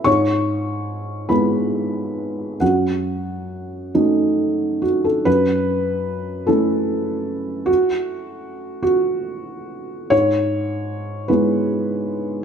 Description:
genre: neoclassical minimalist piano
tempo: 44-52 BPM (dotted quarters)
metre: 6/8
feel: rubato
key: F# dorian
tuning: A4 = 439 Hz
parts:
  - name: felt-muted upright piano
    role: solo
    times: 0.0-12.4 s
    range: F#2 to C#6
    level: -18 LUFS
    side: right 1 dB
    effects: slapback echo
room: light reverb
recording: close, detailed microphones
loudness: -18 LUFS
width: side -7 dB against mid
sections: 0.0-5.3 A section; 5.3-12.4 A section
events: none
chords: 0.1 E/G#; 2.6 F#m; 5.3 F#m7; 10.1 E/G#

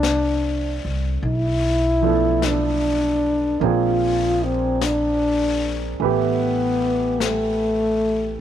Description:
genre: jazz ballad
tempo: 50 BPM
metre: 4/4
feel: swing 67% on 8ths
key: unclear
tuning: A4 = 440 Hz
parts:
  - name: breathy trombone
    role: melody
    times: 0.0-8.4 s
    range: A3 to F4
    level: -20 LUFS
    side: left 2 dB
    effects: none
  - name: warm grand piano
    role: accompaniment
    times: 0.0-8.4 s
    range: E3 to E5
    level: -26 LUFS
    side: right 13 dB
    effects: none
  - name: upright bass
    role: bass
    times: 0.0-8.4 s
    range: A1 to C2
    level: -25 LUFS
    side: equal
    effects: none
  - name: jazz brush drum kit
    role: drums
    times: 0.0-8.4 s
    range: brushed snare drum, hi-hat, snare drum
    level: -31 LUFS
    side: left 8 dB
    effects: none
room: light reverb, small room ambience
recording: 1960s-style stereo with parts hard left and right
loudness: -18 LUFS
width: side -10 dB against mid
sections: 0.0-8.4 A section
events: none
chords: 0.0 F6; 1.2 Bm7b5; 3.6 Bb9; 6.0 Asus2

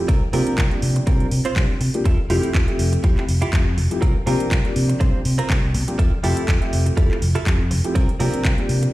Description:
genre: filtered disco house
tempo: 122 BPM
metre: 4/4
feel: swing 55% on 16ths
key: F major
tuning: A4 = 439 Hz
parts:
  - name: dark grand piano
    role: accompaniment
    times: 0.0-8.9 s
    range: F3 to E5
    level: -25 LUFS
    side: left 1 dB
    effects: phaser, vintage 12-bit sampler grit, sidechain pumping, low-pass filter
  - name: direct-recorded clean electric guitar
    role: riff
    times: 0.1-8.9 s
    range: C4 to C5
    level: -28 LUFS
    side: right 3 dB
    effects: wide subtle chorus, sidechain pumping, low-pass filter
  - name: fingered electric bass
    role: bass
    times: 0.1-8.9 s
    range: F1 to C3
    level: -21 LUFS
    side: equal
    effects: sidechain pumping, low-pass filter
  - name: electronic kick drum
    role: drums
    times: 0.1-8.6 s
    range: none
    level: -19 LUFS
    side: equal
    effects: none
  - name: house drum kit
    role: drums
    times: 0.1-8.9 s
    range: handclaps, hi-hat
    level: -29 LUFS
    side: equal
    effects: sidechain pumping on hats
room: little or no reverb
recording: played on a big sound system in a bare room, stone room reverb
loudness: -17 LUFS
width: side -17 dB against mid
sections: 0.0-8.9 A section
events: none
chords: 0.1 C7sus4; 2.1 Fmaj7; 4.0 C7sus4; 6.0 Fmaj7; 8.0 C7sus4

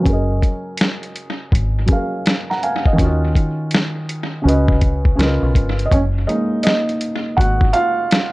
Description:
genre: lo-fi hip hop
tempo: 82 BPM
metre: 4/4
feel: swing 65% on 16ths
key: F# major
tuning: A4 = 440 Hz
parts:
  - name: felt-muted upright piano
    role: accompaniment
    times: 0.0-8.3 s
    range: C#3 to A#5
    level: -19 LUFS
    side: right 1 dB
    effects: cassette tape, low-pass filter
  - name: deep dub fingered electric bass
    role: bass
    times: 0.1-7.7 s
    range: F#1 to D#2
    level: -18 LUFS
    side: equal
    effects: none
  - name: lo-fi sampler-style drum kit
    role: drums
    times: 0.1-8.3 s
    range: hi-hat, kick drum, snare drum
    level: -17 LUFS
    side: equal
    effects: analog delay
room: light reverb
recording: echo-heavy mix, cassette tape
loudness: -15 LUFS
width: side -20 dB against mid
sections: 0.0-5.9 A section; 5.9-8.3 B section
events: filter sweep on felt piano 0.0-5.9; felt piano solo 5.9-8.3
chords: 0.1 F#69; 3.0 D#m7; 4.4 C#7sus4; 5.2 C#13; 5.9 F#69

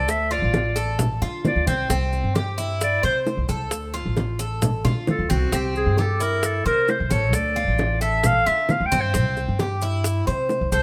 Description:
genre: latin, Cuban son and guajira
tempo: 133 BPM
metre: 4/4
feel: straight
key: D minor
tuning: A4 = 439 Hz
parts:
  - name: warm clarinet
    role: melody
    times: 0.0-10.8 s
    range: F#4 to G5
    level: -25 LUFS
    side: equal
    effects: slapback echo
  - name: Cuban tres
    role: arpeggios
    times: 0.0-10.8 s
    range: C4 to C5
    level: -30 LUFS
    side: equal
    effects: none
  - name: upright bass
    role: bass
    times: 0.0-10.8 s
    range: A1 to D3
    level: -27 LUFS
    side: equal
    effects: none
  - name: bongos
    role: percussion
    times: 0.1-10.7 s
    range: none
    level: -32 LUFS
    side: equal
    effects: none
  - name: congas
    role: percussion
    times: 0.1-10.7 s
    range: none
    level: -28 LUFS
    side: equal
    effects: none
  - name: maracas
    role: percussion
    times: 0.1-10.8 s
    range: none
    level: -37 LUFS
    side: equal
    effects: none
room: light reverb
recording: none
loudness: -22 LUFS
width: mono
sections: 0.0-10.8 A section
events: clarinet solo 0.0-10.8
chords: 0.1 Dm; 1.9 C; 3.7 Dm; 5.5 C; 7.3 Dm; 9.1 C

